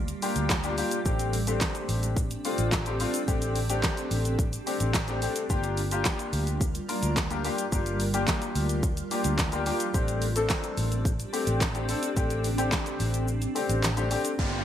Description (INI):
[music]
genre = dance-pop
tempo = 108 BPM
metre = 4/4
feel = straight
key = unclear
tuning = A4 = 441 Hz
[part]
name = granular cloud pad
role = sustained chords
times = 0.0-14.6 s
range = G3 to Bb4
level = -36 LUFS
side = right 2 dB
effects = built-in reverb, analog chorus, sidechain pumping
[part]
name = vintage muted fingered electric bass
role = bass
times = 0.0-14.6 s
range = G1 to D2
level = -30 LUFS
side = equal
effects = sidechain pumping
[part]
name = pop drum kit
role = drums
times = 0.1-14.5 s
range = handclaps, hi-hat, kick drum, shaker, snare drum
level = -29 LUFS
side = equal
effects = none
[part]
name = warm grand piano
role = accompaniment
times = 0.2-14.6 s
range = A3 to Bb4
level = -30 LUFS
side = left 3 dB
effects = analog chorus, sidechain pumping
[part]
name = downlifter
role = sound effects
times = 14.4-14.6 s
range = none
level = -31 LUFS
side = right 3 dB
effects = none
[sound]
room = moderate plate reverb, RT60 2.1 s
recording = bright 1980s-style digital production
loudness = -25 LUFS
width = side -10 dB against mid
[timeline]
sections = 0.0-14.4 A section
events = kick muted 13.3-14.4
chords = 0.0 Gm7; 1.1 D7sus4/A; 5.5 Gm7; 9.9 D7sus4/A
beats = 0.50 | 1.05 1.61 2.17 2.72 | 3.28 3.83 4.39 4.94 | 5.50 6.05 6.61 7.17 | 7.72 8.28 8.83 9.39 | 9.94 10.50 11.05 11.61 | 12.17 12.72 13.28 13.83 | 14.39